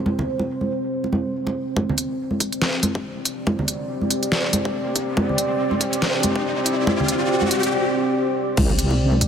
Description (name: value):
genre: deep dubstep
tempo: 141 BPM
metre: 4/4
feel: swing 57% on 16ths, half-time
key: unclear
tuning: A4 = 441 Hz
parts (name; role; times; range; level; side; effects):
- deep dark ambient pad; sustained chords; 0.0-9.3 s; C4 to D5; -23 LUFS; equal; chorus, built-in reverb
- congas; percussion; 0.1-9.2 s; none; -25 LUFS; right 1 dB; none
- electronic kick drum; drums; 1.8-9.3 s; none; -25 LUFS; left 1 dB; high-pass filter on kick
- riser; sound effects; 3.6-7.7 s; none; -28 LUFS; left 1 dB; none
- dubstep drum kit; drums; 2.0-9.3 s; crash cymbal, hi-hat, snare drum; -24 LUFS; equal; low-pass filter on hats, low-pass filter on snare, low-pass filter on cymbals
- wobble bass; bass; 8.6-9.3 s; C2; -19 LUFS; left 1 dB; chorus
room: moderate huge ambient reverb, RT60 4.0 s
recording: none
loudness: -19 LUFS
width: side -8 dB against mid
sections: 0.0-1.8 A section; 1.8-8.6 B section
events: filter sweep on ambient pad 0.0-1.8; build-up 1.8-8.6; riser 3.6-7.7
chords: 0.0 C5